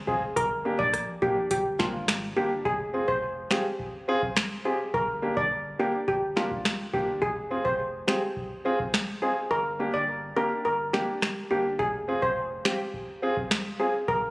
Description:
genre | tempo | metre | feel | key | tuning
dancehall | 105 BPM | 4/4 | straight | unclear | A4 = 440 Hz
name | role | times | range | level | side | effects
warm sub bass | bass | 0.0-14.3 s | F1 to Bb1 | -42 LUFS | equal | none
steel pan | melody | 0.1-14.2 s | F4 to D5 | -27 LUFS | equal | tape echo
warm baby grand piano | accompaniment | 0.1-13.9 s | Bb3 to Ab4 | -30 LUFS | equal | none
booming analog drum machine | drums | 0.1-14.3 s | finger snaps, hi-hat, kick drum, rim click, snare drum | -30 LUFS | equal | none
room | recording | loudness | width
moderate lush hall reverb, RT60 2.5 s | recorded on a phone in the room, club reverb, compression | -25 LUFS | side -23 dB against mid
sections
0.0-2.7 A section; 2.7-14.3 B section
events
kick muted 9.5-11.8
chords
0.4 Gm; 2.7 Fm; 4.9 Gm; 7.2 Fm; 9.5 Gm; 11.8 Fm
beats
| 0.37 0.94 1.51 2.08 | 2.65 3.22 3.80 4.37 | 4.94 5.51 6.08 6.65 | 7.22 7.80 8.37 8.94 | 9.51 10.08 10.65 11.22 | 11.80 12.37 12.94 13.51 | 14.08

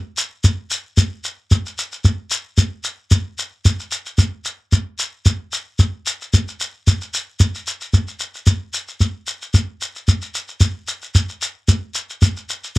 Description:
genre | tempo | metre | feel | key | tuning
highlife | 112 BPM | 4/4 | swing 54% on 16ths | none | none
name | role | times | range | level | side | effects
shekere | percussion | 0.2-12.7 s | none | -15 LUFS | equal | none
room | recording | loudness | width
little or no reverb | dry, close 1970s-style studio recording | -18 LUFS | side -21 dB against mid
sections
0.0-7.9 A section; 7.9-12.8 B section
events
none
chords
none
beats
0.43 0.97 | 1.51 2.04 2.58 3.12 | 3.65 4.19 4.72 5.26 | 5.80 6.33 6.87 7.40 | 7.94 8.47 9.01 9.54 | 10.08 10.62 11.15 11.69 | 12.22

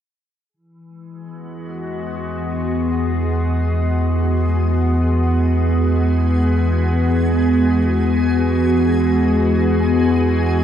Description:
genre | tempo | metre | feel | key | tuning
ambient | free time | none | none | E major | A4 = 444 Hz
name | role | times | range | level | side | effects
glassy FM pad | sustained chords | 1.0-10.6 s | E3 to G#4 | -18 LUFS | equal | ensemble chorus, built-in reverb, shimmer reverb
deep rumbling drone | bass | 2.2-10.6 s | E2 | -19 LUFS | equal | built-in reverb
backwards swelling texture | texture | 1.7-10.6 s | G#4 to G#5 | -34 LUFS | equal | built-in reverb, ensemble chorus, shimmer reverb
room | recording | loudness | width
wet lush hall reverb, RT60 2.6 s | dreamy mix soaked in reverb, cassette tape | -15 LUFS | side -9 dB against mid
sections
0.5-10.6 A section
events
fade-in on synth texture 0.5-10.6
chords
0.5 Eadd9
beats
free time

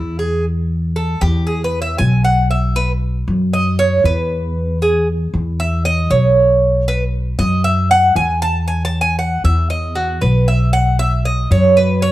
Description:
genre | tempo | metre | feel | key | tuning
latin, Cuban son and guajira | 117 BPM | 4/4 | straight | E major | A4 = 440 Hz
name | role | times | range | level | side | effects
Cuban tres | arpeggios | 0.0-12.1 s | E4 to A5 | -16 LUFS | right 1 dB | none
upright bass | bass | 0.0-12.1 s | B1 to F#2 | -16 LUFS | equal | none
room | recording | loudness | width
light reverb | dark, warm production | -13 LUFS | side -15 dB against mid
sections
0.5-12.1 A section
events
Cuban tres solo 0.5-12.1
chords
0.5 E5; 2.5 Bsus4; 4.6 E5; 6.6 Bsus4; 8.7 E5; 10.7 Bsus4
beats
| 0.45 0.97 1.48 1.99 | 2.51 3.02 3.54 4.05 | 4.56 5.08 5.59 6.10 | 6.62 7.13 7.65 8.16 | 8.68 9.19 9.71 10.22 | 10.73 11.25 11.77

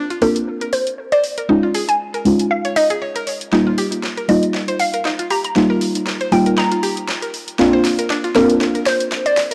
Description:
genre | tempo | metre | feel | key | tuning
deep house | 118 BPM | 4/4 | swing 55% on 16ths | F minor | A4 = 440 Hz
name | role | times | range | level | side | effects
mallet-like synth pluck | arpeggios | 0.0-9.5 s | D4 to Db5 | -27 LUFS | equal | chorus, tape echo
deep mellow chord stab | stabs | 0.0-9.5 s | G3 to F4 | -20 LUFS | equal | chorus, tape echo
deep house drum kit | drums | 0.1-9.5 s | hi-hat, snare drum | -28 LUFS | equal | overdrive, high-pass filter on hats, high-pass filter on snare
glassy wavetable pluck | melody | 0.2-9.4 s | Bb4 to Bb5 | -21 LUFS | equal | chorus, tape echo
room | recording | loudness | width
moderate lush hall reverb, RT60 2.0 s | dry, gritty hardware recording, transformer saturation, cassette tape | -18 LUFS | mono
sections
0.0-9.5 A section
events
build-up 0.0-9.5; filter sweep on synth stab 0.0-9.5; drum fill 3.5-9.5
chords
0.0 C9sus4; 1.5 Eb9sus4; 3.5 F9sus4; 7.3 C9sus4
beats
0.47 0.98 | 1.49 2.00 2.51 3.02 | 3.53 4.03 4.54 5.05 | 5.56 6.07 6.58 7.08 | 7.59 8.10 8.61 9.12

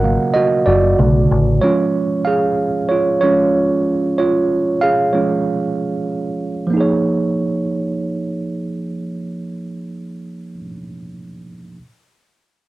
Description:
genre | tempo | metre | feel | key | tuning
R&B | 94 BPM | 4/4 | swing 55% on 16ths | Eb minor | A4 = 440 Hz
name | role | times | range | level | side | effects
tine electric piano | accompaniment | 0.0-11.8 s | Db3 to Gb5 | -16 LUFS | right 2 dB | medium stereo tremolo, cassette tape
deep dub picked electric bass | bass | 0.0-1.6 s | Gb1 to B1 | -16 LUFS | left 2 dB | none
room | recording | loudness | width
moderate studio reverb, RT60 0.6 s | home recording on cassette | -15 LUFS | side -17 dB against mid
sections
0.0-6.7 A section; 6.7-9.3 B section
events
tine electric piano solo 0.0-6.7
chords
0.0 Ab13sus4; 1.0 Bm7; 1.6 Db/F; 6.7 Ebsus2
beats
0.34 0.98 | 1.62 2.25 2.89 3.53 | 4.17 4.81 5.45 6.08 | 6.72 7.36 8.00 8.64

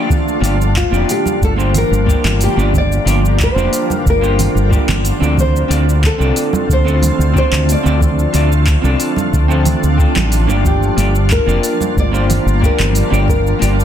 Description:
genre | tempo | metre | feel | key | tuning
sunset chillout | 91 BPM | 4/4 | straight | G minor | A4 = 441 Hz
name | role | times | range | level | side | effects
vintage hollow-body jazz guitar | accompaniment | 0.0-13.8 s | Bb3 to D5 | -20 LUFS | equal | auto-pan, ping-pong delay
shimmering ambient pad | sustained chords | 0.0-13.8 s | D3 to F4 | -21 LUFS | equal | chorus, built-in reverb
deep house drum kit | drums | 0.1-13.8 s | handclaps, hi-hat, shaker | -23 LUFS | right 1 dB | none
electronic kick drum | drums | 0.1-13.4 s | none | -16 LUFS | equal | none
congas | percussion | 0.1-13.4 s | none | -23 LUFS | right 5 dB | none
fingered electric bass | bass | 0.4-13.8 s | F1 to D2 | -14 LUFS | equal | tube saturation
nylon-string guitar | melody | 0.8-13.8 s | F4 to D5 | -20 LUFS | left 2 dB | digital delay
room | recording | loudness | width
light reverb | dense, heavily limited modern master | -11 LUFS | side -10 dB against mid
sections
0.0-13.8 A section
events
none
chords
0.1 Gm7; 5.4 Dm7; 10.6 Gm7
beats
| 0.10 0.76 1.42 2.07 | 2.73 3.39 4.05 4.71 | 5.37 6.03 6.69 7.35 | 8.01 8.67 9.33 9.99 | 10.65 11.30 11.96 12.62 | 13.28

